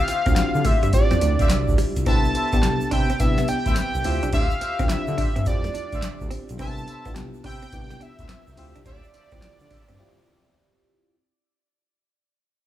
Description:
R&B, new jack swing; 106 BPM; 4/4; swing 64% on 16ths; D dorian; A4 = 440 Hz
fat analog lead; melody; 0.0-10.5 s; D5 to A5; -27 LUFS; equal; tape echo
FM electric piano; accompaniment; 0.0-11.1 s; B3 to G4; -29 LUFS; left 2 dB; chorus
direct-recorded clean electric guitar; riff; 0.1-9.9 s; G3 to D4; -32 LUFS; right 5 dB; wide subtle chorus
warm horn section; stabs; 0.1-9.9 s; F4 to E5; -34 LUFS; left 1 dB
booming analog drum machine; drums; 0.1-10.0 s; handclaps, hi-hat, kick drum, snare drum, tambourine; -23 LUFS; equal
egg shaker; percussion; 0.1-10.0 s; -46 LUFS; right 8 dB
smooth synth bass; bass; 0.3-10.0 s; B1 to D3; -26 LUFS; equal
little or no reverb; small room reverb; -19 LUFS; side -13 dB against mid
0.0-11.1 A section
fade-out 0.0-11.1; break 10.0-11.1
0.0 Dm11; 2.1 Cmaj7; 4.0 Dm11; 6.6 Cmaj7; 8.6 Dm11

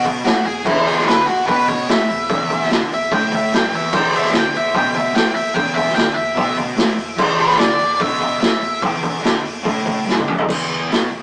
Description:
garage rock duo or trio; 147 BPM; 4/4; straight; A4 = 439 Hz
octave-fuzz lead guitar; melody; 0.0-8.8 s; E4 to G5; -19 LUFS; equal; distortion, analog delay
fuzz guitar; riff; 0.0-11.2 s; E2 to D3; -23 LUFS; equal; distortion
raw garage drum kit; drums; 0.0-11.0 s; crash cymbal, hi-hat, kick drum, snare drum, toms; -17 LUFS; equal
light reverb; rough rehearsal-room recording, warm saturation, small speaker sound; -14 LUFS; side -29 dB against mid
0.0-10.5 A section
lead electric guitar solo 0.0-10.5; drum fill 10.1-10.5
0.0 E5

